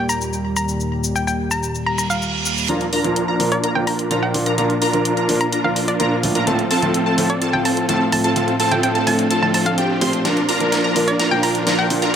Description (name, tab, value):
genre	EDM, festival progressive house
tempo	127 BPM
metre	4/4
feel	straight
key	Bb major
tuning	A4 = 440 Hz
part	hollow square pluck	melody	0.0-12.1 s	D5 to Bb5	-23 LUFS	equal	chorus, digital delay
part	warm concert grand piano	accompaniment	0.0-12.2 s	A2 to Bb4	-22 LUFS	right 1 dB	none
part	lush unison pad	sustained chords	0.0-12.2 s	Eb2 to D4	-24 LUFS	left 1 dB	chorus
part	big-room dance drum kit	drums	0.1-12.1 s	hi-hat, shaker, snare drum	-25 LUFS	left 1 dB	high-pass filter on perc, high-pass filter on hats, high-pass filter on snare
part	reverse cymbal and riser	sound effects	1.9-2.7, 10.2-12.2 s	none	-26 LUFS	right 5 dB	none
part	plucky unison lead	arpeggios	2.7-12.1 s	G5 to C6	-24 LUFS	left 1 dB	analog chorus, digital delay
part	supersaw chords	riff	2.7-12.1 s	C4 to C5	-21 LUFS	right 1 dB	low-pass filter, digital delay
room	moderate lush hall reverb, RT60 1.7 s, digital ambience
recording	high-pass filter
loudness	-16 LUFS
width	side -8 dB against mid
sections	0.0-2.7 A section; 2.7-12.2 B section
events	reverse cymbal 1.9-2.7; build-up 2.7-12.2; filter sweep on supersaw synth 2.7-12.2; filter sweep on digital synth lead 2.7-12.2; drum fill 10.2-12.2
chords	0.0 Eb; 2.7 Bb; 6.5 F/A; 10.2 Bb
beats	0.33 | 0.80 1.27 1.75 2.22 | 2.69 3.16 3.64 4.11 | 4.58 5.05 5.53 6.00 | 6.47 6.94 7.42 7.89 | 8.36 8.83 9.30 9.78 | 10.25 10.72 11.20 11.67 | 12.14